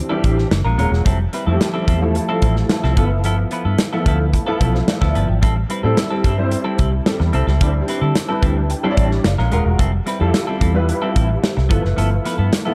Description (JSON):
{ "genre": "polished 1980s jazz-funk pop", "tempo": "110 BPM", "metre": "4/4", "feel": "straight", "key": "unclear", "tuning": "A4 = 440 Hz", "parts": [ { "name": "warm grand piano", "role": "accompaniment", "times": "0.0-12.7 s", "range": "E3 to A5", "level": "-25 LUFS", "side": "equal", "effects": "ensemble chorus" }, { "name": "semi-hollow electric guitar", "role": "riff", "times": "0.1-12.7 s", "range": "F3 to B4", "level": "-26 LUFS", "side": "equal", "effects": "lush chorus" }, { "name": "vintage muted fingered electric bass", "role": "bass", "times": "0.2-12.5 s", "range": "D#1 to D3", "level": "-20 LUFS", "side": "equal", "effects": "none" }, { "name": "modern studio drum kit", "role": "drums", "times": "0.2-12.7 s", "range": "hi-hat, kick drum, snare drum", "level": "-22 LUFS", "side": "equal", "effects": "none" } ], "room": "light reverb, studio reverb", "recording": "dark, warm production", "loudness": "-18 LUFS", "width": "mono", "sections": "0.0-12.7 A section", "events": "grand piano fill 8.2-9.8", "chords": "0.0 D9sus4; 0.5 F#maj9; 1.1 Fmaj9; 3.0 G13; 5.4 Am7; 7.6 D9sus4; 9.2 F#maj9; 9.8 Fmaj9; 11.7 G13" }